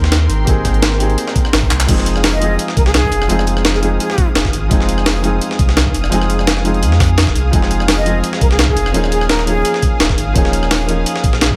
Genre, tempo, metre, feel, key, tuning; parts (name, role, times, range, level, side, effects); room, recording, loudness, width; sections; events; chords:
liquid drum and bass; 170 BPM; 4/4; swing 54% on 16ths; A4 = 439 Hz
felt-muted upright piano; accompaniment; 0.0-11.6 s; F3 to Ab4; -23 LUFS; equal; vintage 12-bit sampler grit, digital delay
lush unison pad; sustained chords; 0.0-11.6 s; Ab4 to Eb6; -27 LUFS; equal; chorus, sidechain pumping
warm sub bass; bass; 0.0-11.6 s; Eb1 to F2; -19 LUFS; equal
breakbeat sampler-style drum kit; drums; 0.0-11.5 s; hi-hat, snare drum; -25 LUFS; equal; high-pass filter on hats, high-pass filter on snare
breakbeat sampler-style drum kit; drums; 0.1-11.5 s; crash cymbal, handclaps, hi-hat, rim click, snare drum; -21 LUFS; equal
electronic kick drum; drums; 0.5-11.6 s; -19 LUFS; equal
breathy concert flute; melody; 2.3-4.3, 8.0-9.8 s; Ab4 to Eb5; -23 LUFS; equal; tape echo
digital ambience; -14 LUFS; mono
0.0-1.9 A section; 1.9-11.6 A section
drop 0.0-1.9, 1.9-11.6; drum fill 1.7; band accent 1.8
0.0 Abmaj9; 1.9 Fm7; 8.9 Eb9sus4